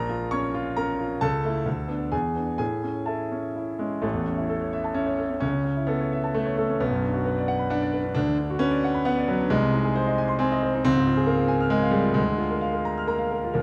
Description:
classical, virtuoso piano study; 133 BPM; 3/4; rubato; A major; A4 = 441 Hz
clear grand piano; solo; 0.0-13.6 s; A1 to F6; -25 LUFS; equal
light reverb; close, detailed microphones; -25 LUFS; mono
0.0-4.0 A section; 4.0-13.6 B section
0.0 Bbm; 1.2 A/C#; 1.7 Bm7/D; 2.1 E7; 2.6 A; 5.4 A/C#; 6.8 Bm; 8.2 Bm/D; 9.5 Ab/C; 10.8 Bbm7/Db; 12.2 Bb7/D

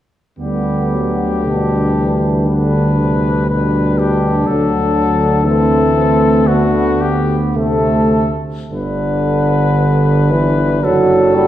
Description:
classical, hymn-like piece for brass band; 50-62 BPM; 4/4; rubato; G major; A4 = 440 Hz
warm cornet; melody; 0.4-11.5 s; F#4 to B4; -19 LUFS; left 5 dB
warm French horn section; second line; 0.4-11.5 s; A3 to F#4; -20 LUFS; right 4 dB
warm euphonium; accompaniment; 0.4-11.5 s; F#3 to D4; -21 LUFS; left 1 dB
warm trombone; accompaniment; 0.4-11.5 s; B2 to G3; -18 LUFS; right 1 dB
warm tuba; bass; 0.4-11.5 s; F#1 to D2; -17 LUFS; equal
wet recital hall reverb, RT60 1.7 s; heard from further back in the room; -12 LUFS; side -12 dB against mid
0.4-8.7 A section; 8.7-11.5 B section
0.4 G/D; 4.5 D7; 8.7 G; 10.8 D/F#

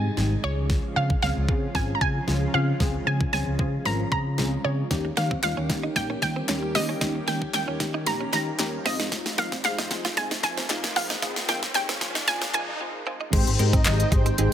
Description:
dance-pop; 114 BPM; 4/4; straight; A4 = 440 Hz
wide unison pluck; melody; 0.0-13.0 s; Db5 to Bb5; -28 LUFS; right 1 dB; phaser, tape echo
funky polysynth comp; accompaniment; 0.0-14.5 s; Ab3 to Bb4; -32 LUFS; left 2 dB; chorus, sidechain pumping
lush unison pad; sustained chords; 0.0-14.5 s; C3 to G5; -35 LUFS; equal; chorus, sidechain pumping
vintage muted fingered electric bass; bass; 0.0-14.5 s; Ab1 to F3; -27 LUFS; equal; sidechain pumping
pop drum kit; drums; 0.2-14.5 s; crash cymbal, handclaps, hi-hat, kick drum, snare drum; -27 LUFS; equal
riser; sound effects; 8.7-12.8 s; -38 LUFS; equal
direct-recorded clean electric guitar; riff; 5.0-14.4 s; Ab3 to F4; -33 LUFS; right 5 dB; analog chorus
group handclap; percussion; 5.4-14.0 s; -33 LUFS; left 5 dB
filtered supersaw swell; melody; 13.3-14.2 s; C4 to Eb5; -30 LUFS; equal; phaser
light reverb, digital ambience; dense, heavily limited modern master, high-pass filter; -22 LUFS; side -10 dB against mid
0.0-13.3 A section; 13.3-14.5 B section
build-up 0.0-13.3; drum fill 0.0-12.8; filter sweep 0.0-13.3; riser 8.7-13.3; break 12.8-13.3; drop 13.3-14.5
0.4 Dbmaj7; 4.9 Eb7; 8.9 Fm7; 13.3 Abmaj7

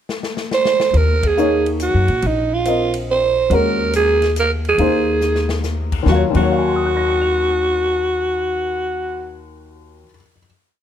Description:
modal jazz; 141 BPM; 3/4; swing 67% on 8ths; Eb dorian; A4 = 440 Hz
swinging big-band drum kit; drums; 0.1-6.4 s; crash cymbal, hi-hat, kick drum, ride cymbal, snare drum; -28 LUFS; left 4 dB
growling alto saxophone; melody; 0.5-9.4 s; Eb4 to C5; -17 LUFS; right 2 dB; plate reverb
upright bass; bass; 0.9-10.0 s; Bb1 to Bb2; -21 LUFS; left 1 dB
dark baby grand piano; accompaniment; 1.4-10.4 s; Eb2 to F7; -21 LUFS; left 3 dB
light reverb; -15 LUFS; side -10 dB against mid
0.0-0.9 pickup bar; 0.9-6.1 A section; 6.1-8.6 final chord
drum fill 0.1-0.9, 5.2-5.6; band accent 1.2
0.0 N.C.; 0.9 Eb7sus2; 3.5 Ebmadd11; 6.1 Ebm9

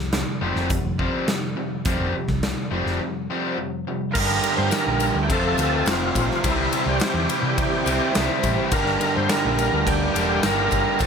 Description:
classic rock; 105 BPM; 4/4; straight; G dorian; A4 = 441 Hz
crunchy overdriven guitar; riff; 0.0-11.1 s; F2 to E4; -28 LUFS; right 8 dB
overdriven semi-hollow guitar; riff; 0.0-11.1 s; F2 to A4; -27 LUFS; left 6 dB
hollow-body short-scale fingered electric bass; bass; 0.0-11.1 s; E1 to C3; -26 LUFS; equal
big rock drum kit; drums; 0.1-11.1 s; crash cymbal, hi-hat, kick drum, ride cymbal, snare drum; -26 LUFS; equal
tonewheel organ; melody; 4.1-11.1 s; E4 to C5; -25 LUFS; equal; slow rotary speaker, overdrive, chorus vibrato, plate reverb
cranked stack guitar; riff; 4.1-11.1 s; F2 to C4; -29 LUFS; right 1 dB; overdrive
octave-fuzz lead guitar; second line; 4.2-11.1 s; C4 to G4; -30 LUFS; right 7 dB; distortion, tape echo
tonewheel organ; sustained chords; 4.2-11.1 s; F3 to C5; -34 LUFS; left 1 dB
tambourine; percussion; 4.2-11.1 s; -38 LUFS; left 8 dB
moderate studio ambience, RT60 0.5 s; -20 LUFS; side -6 dB against mid
0.0-4.2 A section; 4.2-11.1 B section
break 3.0-4.2
0.0 Fsus2; 4.2 Gm; 5.3 F; 6.4 C; 8.7 Gm

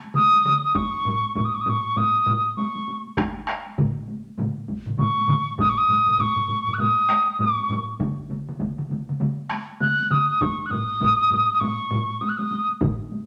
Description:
japanese traditional, taiko drum ensemble; 100 BPM; 4/4; swing 60% on 16ths; A4 = 441 Hz
taiko ensemble; percussion; 0.0-13.3 s; -33 LUFS; equal
taiko ensemble; percussion; 0.1-13.0 s; -29 LUFS; equal
mellow wooden piccolo; melody; 0.2-12.7 s; Db6 to Gb6; -22 LUFS; equal
taiko ensemble; percussion; 0.7-13.0 s; -32 LUFS; equal
taiko ensemble; percussion; 1.1-13.0 s; -32 LUFS; equal
wet large studio reverb, RT60 1.0 s; -22 LUFS; mono
0.0-13.3 A section

